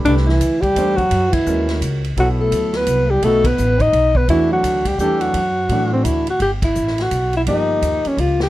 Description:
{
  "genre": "jazz, small-group swing and bop",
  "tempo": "170 BPM",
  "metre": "3/4",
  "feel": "swing 63% on 8ths",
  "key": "G major",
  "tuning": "A4 = 440 Hz",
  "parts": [
    { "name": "warm baby grand piano", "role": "accompaniment", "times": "0.0-8.5 s", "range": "E3 to C5", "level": "-24 LUFS", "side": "right 1 dB", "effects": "none" },
    { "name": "upright bass", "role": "bass", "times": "0.0-8.5 s", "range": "G1 to A2", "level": "-20 LUFS", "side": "equal", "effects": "none" },
    { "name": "swinging big-band drum kit", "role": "drums", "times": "0.0-8.5 s", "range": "hi-hat, kick drum, ride cymbal, snare drum", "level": "-26 LUFS", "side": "equal", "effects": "none" },
    { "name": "mellow alto saxophone", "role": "melody", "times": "0.1-8.5 s", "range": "C4 to D#5", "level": "-18 LUFS", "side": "left 1 dB", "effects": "none" },
    { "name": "breathy trombone", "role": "second line", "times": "0.1-6.0 s", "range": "D3 to D#4", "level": "-23 LUFS", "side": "right 2 dB", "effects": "none" }
  ],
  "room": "light reverb",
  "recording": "dark, warm production",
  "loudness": "-15 LUFS",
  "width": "side -15 dB against mid",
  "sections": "0.0-6.4 A section; 6.4-8.5 B section",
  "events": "band accent 1.3, 3.4, 6.6",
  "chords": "0.1 Cmaj9; 1.1 F#7; 2.2 Bm7; 3.2 B7; 4.3 D; 6.4 G69; 7.5 Eb9/G"
}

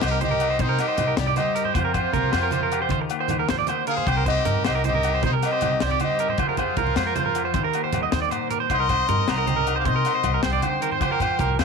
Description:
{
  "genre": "highlife guitar band",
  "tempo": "104 BPM (dotted quarters)",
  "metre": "12/8",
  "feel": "straight",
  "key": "C minor",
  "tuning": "A4 = 440 Hz",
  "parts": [
    { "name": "silver concert flute", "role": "melody", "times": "0.0-11.6 s", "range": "C5 to D6", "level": "-27 LUFS", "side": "equal", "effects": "none" },
    { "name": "clean electric guitar", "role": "accompaniment", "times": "0.0-11.6 s", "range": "G2 to Bb4", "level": "-31 LUFS", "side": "left 15 dB", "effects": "analog chorus" },
    { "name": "electric guitar at the edge of break-up", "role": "arpeggios", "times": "0.0-11.6 s", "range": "Bb4 to Eb5", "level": "-25 LUFS", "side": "right 14 dB", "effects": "vibrato effect, tape echo" },
    { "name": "upright bass", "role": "bass", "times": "0.0-11.6 s", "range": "C2 to C3", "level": "-27 LUFS", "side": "left 1 dB", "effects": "none" },
    { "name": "tight funk drum kit", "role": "drums", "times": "0.0-11.6 s", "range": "hi-hat, kick drum, snare drum", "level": "-29 LUFS", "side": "left 5 dB", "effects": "none" },
    { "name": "agogo bells", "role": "percussion", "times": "0.0-11.6 s", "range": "none", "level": "-32 LUFS", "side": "left 17 dB", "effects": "none" },
    { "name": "brilliant trumpet", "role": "second line", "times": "0.1-11.6 s", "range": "Eb4 to F5", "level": "-30 LUFS", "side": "left 15 dB", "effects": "none" },
    { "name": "congas", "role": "percussion", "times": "0.2-11.6 s", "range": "none", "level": "-32 LUFS", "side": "right 9 dB", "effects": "none" }
  ],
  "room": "light reverb, small room ambience",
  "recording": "1960s-style stereo with parts hard left and right",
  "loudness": "-20 LUFS",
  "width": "side -5 dB against mid",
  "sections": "0.0-11.6 A section",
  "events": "drum fill 8.1-8.7",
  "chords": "0.0 Cm; 1.8 Fsus2; 2.9 Eb; 4.1 Cm; 6.4 Fmadd9; 7.5 Eb; 8.7 Cm; 11.0 Fsus2"
}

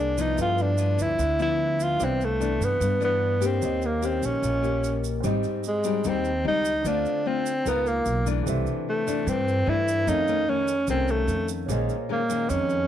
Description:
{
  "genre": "bossa nova",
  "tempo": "149 BPM",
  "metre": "4/4",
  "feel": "straight",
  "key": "unclear",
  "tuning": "A4 = 440 Hz",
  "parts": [
    { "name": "breathy tenor saxophone", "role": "melody", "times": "0.0-12.9 s", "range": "Ab3 to F4", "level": "-25 LUFS", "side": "equal", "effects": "none" },
    { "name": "nylon-string guitar", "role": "accompaniment", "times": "0.0-12.9 s", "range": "F2 to Bb4", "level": "-29 LUFS", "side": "left 9 dB", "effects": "none" },
    { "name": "warm grand piano", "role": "accompaniment", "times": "0.0-12.9 s", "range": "C4 to G5", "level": "-36 LUFS", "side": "right 14 dB", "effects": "none" },
    { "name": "upright bass", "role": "bass", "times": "0.0-12.9 s", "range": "Ab1 to G2", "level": "-28 LUFS", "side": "right 2 dB", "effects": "none" },
    { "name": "tube shaker", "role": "percussion", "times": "0.2-12.9 s", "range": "none", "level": "-41 LUFS", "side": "right 16 dB", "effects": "none" }
  ],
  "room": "moderate spring reverb, RT60 1.3 s, small room ambience",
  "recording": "1960s-style stereo with parts hard left and right",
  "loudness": "-22 LUFS",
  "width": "side -10 dB against mid",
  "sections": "0.0-5.2 A section; 5.2-12.9 B section",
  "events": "none",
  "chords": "0.4 G13; 2.0 Cmaj9; 3.6 Eb7; 5.2 Abmaj7; 6.8 Dm7; 7.7 Db13; 8.5 C69; 10.1 F7b13; 11.7 Bbm11"
}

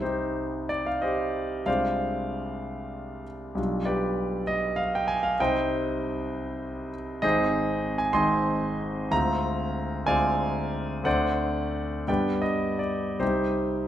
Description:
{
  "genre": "classical, romantic character piece for solo piano",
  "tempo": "50-68 BPM (dotted quarters)",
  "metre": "6/8",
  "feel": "rubato",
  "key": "C minor",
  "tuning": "A4 = 441 Hz",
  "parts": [
    { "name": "warm concert grand piano", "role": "solo", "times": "0.0-13.9 s", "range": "Ab1 to C6", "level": "-25 LUFS", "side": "equal", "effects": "none" }
  ],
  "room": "moderate recital hall reverb, RT60 1.3 s",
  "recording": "none",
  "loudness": "-25 LUFS",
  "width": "side -11 dB against mid",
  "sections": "0.0-13.9 A section",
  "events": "none",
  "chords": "0.0 Cm; 1.7 Dm7b5/C; 3.6 G7/B; 5.4 Cm; 7.2 Ab; 9.1 Dm7b5; 11.1 D7; 12.1 G; 13.2 Cm"
}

